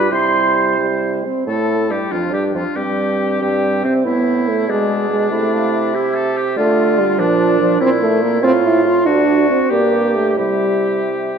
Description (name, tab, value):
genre	quick classical-period movement for wind quintet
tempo	87-97 BPM (dotted quarters)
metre	6/8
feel	rubato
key	unclear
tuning	A4 = 440 Hz
part	mellow concert flute	melody	0.0-11.4 s	C4 to C6	-25 LUFS	left 2 dB	none
part	warm oboe	second line	0.0-11.4 s	C4 to C5	-23 LUFS	left 3 dB	none
part	warm French horn	accompaniment	0.0-11.0 s	F3 to F4	-17 LUFS	equal	none
part	warm clarinet	accompaniment	0.0-11.4 s	C4 to G#4	-21 LUFS	right 6 dB	none
part	warm bassoon	bass	0.0-11.4 s	D2 to D3	-21 LUFS	right 1 dB	none
room	wet scoring stage reverb, RT60 1.8 s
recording	dark, warm production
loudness	-14 LUFS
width	side -6 dB against mid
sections	0.0-1.5 A section; 1.5-11.4 B section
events	none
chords	0.1 C; 1.5 Emadd11; 2.1 Dmadd11/F; 2.8 C5/G; 4.1 Am; 4.7 G#dim/B; 5.3 Am/C; 6.6 Dm; 7.2 Bb; 7.8 C7/Bb; 8.4 F/A; 9.1 D; 9.7 Gm; 10.4 C